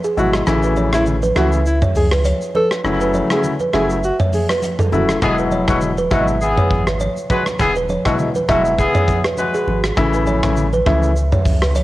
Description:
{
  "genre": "afrobeats",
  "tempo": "101 BPM",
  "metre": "4/4",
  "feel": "swing 55% on 16ths",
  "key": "E major",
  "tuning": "A4 = 442 Hz",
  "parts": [
    { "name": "kalimba", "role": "riff", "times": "0.0-11.8 s", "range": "F#4 to E5", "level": "-22 LUFS", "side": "right 3 dB", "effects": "cassette tape, analog delay" },
    { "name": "big rock drum kit", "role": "drums", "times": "0.0-11.8 s", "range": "hi-hat, kick drum, rim click, shaker, toms", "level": "-21 LUFS", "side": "equal", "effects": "none" },
    { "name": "downlifter", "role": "sound effects", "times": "0.0-0.5 s", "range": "none", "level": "barely audible", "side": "none", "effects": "none" },
    { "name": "clear alto saxophone", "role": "melody", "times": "0.2-5.1 s", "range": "E4 to A4", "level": "-22 LUFS", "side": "equal", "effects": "cassette tape, analog delay" },
    { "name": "warm grand piano", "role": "accompaniment", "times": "0.2-11.1 s", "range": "B2 to E4", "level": "-19 LUFS", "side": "left 3 dB", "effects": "cassette tape" },
    { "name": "punchy sub bass", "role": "bass", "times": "0.2-11.8 s", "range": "D#1 to C#2", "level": "-20 LUFS", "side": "equal", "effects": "none" },
    { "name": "congas", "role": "percussion", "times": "0.2-11.8 s", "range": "none", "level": "-27 LUFS", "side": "right 2 dB", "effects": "none" },
    { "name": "mellow horn section", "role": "second line", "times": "5.2-9.8 s", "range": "B2 to B4", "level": "-20 LUFS", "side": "left 2 dB", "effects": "cassette tape" }
  ],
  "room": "small room ambience",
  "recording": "home recording on cassette",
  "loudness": "-14 LUFS",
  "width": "side -16 dB against mid",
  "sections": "0.0-11.8 A section",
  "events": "break 0.0-5.2",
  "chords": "0.5 A; 2.8 F#m7; 5.2 Eadd9; 10.0 A",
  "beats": "| 0.47 1.06 1.66 2.25 | 2.84 3.44 4.03 4.62 | 5.22 5.81 6.41 7.00 | 7.60 8.19 8.78 9.38 | 9.97 10.57 11.16 11.75"
}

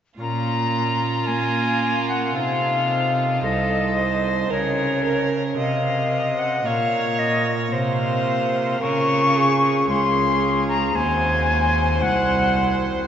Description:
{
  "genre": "classical, baroque-style sonata movement with continuo",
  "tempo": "56 BPM",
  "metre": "4/4",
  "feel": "straight",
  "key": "Bb minor",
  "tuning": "A4 = 438 Hz",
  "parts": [
    { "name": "silver concert flute", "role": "melody", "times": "0.2-12.8 s", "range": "Db5 to Db6", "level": "-22 LUFS", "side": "left 3 dB", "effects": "none" },
    { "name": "rich violin", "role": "second line", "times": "0.2-13.0 s", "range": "F4 to Eb5", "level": "-26 LUFS", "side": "right 4 dB", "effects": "none" },
    { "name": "chamber organ, principal chorus", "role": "accompaniment", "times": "0.2-13.0 s", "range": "C2 to C5", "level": "-27 LUFS", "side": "equal", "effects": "none" },
    { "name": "clear cello", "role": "bass", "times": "0.2-13.1 s", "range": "C2 to Bb3", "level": "-24 LUFS", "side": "right 2 dB", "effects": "none" }
  ],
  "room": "wet cathedral reverb, RT60 4.6 s",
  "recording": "recorded in a church or concert hall, nothing above 7.6 kHz",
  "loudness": "-18 LUFS",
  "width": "side -9 dB against mid",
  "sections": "0.2-13.1 A section",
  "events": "none",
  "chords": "0.2 Bbm; 2.4 Adim/C; 4.5 Bbm; 8.8 Db; 11.0 Cdim/Eb",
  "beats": "| 0.19 1.27 2.35 3.43 | 4.50 5.58 6.66 7.72 | 8.82 9.89 10.95 12.02"
}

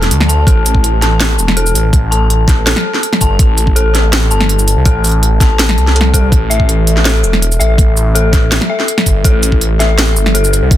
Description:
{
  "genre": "half-time drum and bass",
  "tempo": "164 BPM",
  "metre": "4/4",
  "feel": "half-time",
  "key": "A minor",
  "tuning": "A4 = 439 Hz",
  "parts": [
    { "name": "dark detuned synth bell", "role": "arpeggios", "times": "0.0-10.8 s", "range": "A4 to A5", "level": "-17 LUFS", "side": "left 4 dB", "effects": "chorus, digital delay" },
    { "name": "phased detuned saw bass", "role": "bass", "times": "0.0-10.8 s", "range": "E1 to D2", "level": "-12 LUFS", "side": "equal", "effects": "phaser, tube saturation" },
    { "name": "drum and bass drum kit", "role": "drums", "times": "0.0-10.8 s", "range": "hi-hat, shaker, snare drum", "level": "-14 LUFS", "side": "equal", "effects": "none" },
    { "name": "electronic kick drum", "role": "drums", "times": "0.5-10.8 s", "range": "none", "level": "-10 LUFS", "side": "equal", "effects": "none" }
  ],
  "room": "digital ambience",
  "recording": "dense, heavily limited modern master",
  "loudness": "-9 LUFS",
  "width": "side -12 dB against mid",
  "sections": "0.0-10.8 A section",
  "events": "kick drops out 0.1-0.5",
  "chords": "0.0 A5",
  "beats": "0.10 | 0.47 0.83 1.20 1.57 | 1.93 2.30 2.66 3.03 | 3.40 3.76 4.13 4.49 | 4.86 5.22 5.59 5.96 | 6.32 6.69 7.05 7.42 | 7.79 8.15 8.52 8.88 | 9.25 9.62 9.98 10.35 | 10.71"
}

